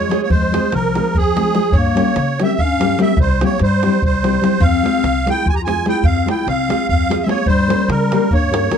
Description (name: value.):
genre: balkan folk, Balkan wedding band.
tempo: 293 BPM (eighths).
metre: 7/8.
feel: straight.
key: F harmonic minor.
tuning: A4 = 440 Hz.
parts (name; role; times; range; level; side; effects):
musette accordion; melody; 0.0-8.8 s; Ab4 to Bb5; -19 LUFS; right 4 dB; none.
mellow clarinet; second line; 0.0-8.7 s; F3 to G4; -20 LUFS; left 6 dB; none.
nylon-string guitar; accompaniment; 0.0-8.8 s; G3 to Bb4; -19 LUFS; left 1 dB; none.
upright bass; bass; 0.0-8.7 s; C2 to Db3; -20 LUFS; equal; none.
davul; percussion; 0.1-8.8 s; none; -20 LUFS; equal; none.
room: light reverb.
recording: dark, warm production.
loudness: -13 LUFS.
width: side -7 dB against mid.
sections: 0.0-8.8 A section.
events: none.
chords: 0.0 Fm; 1.7 Gdim; 3.2 C; 4.6 Fm; 7.5 Gdim.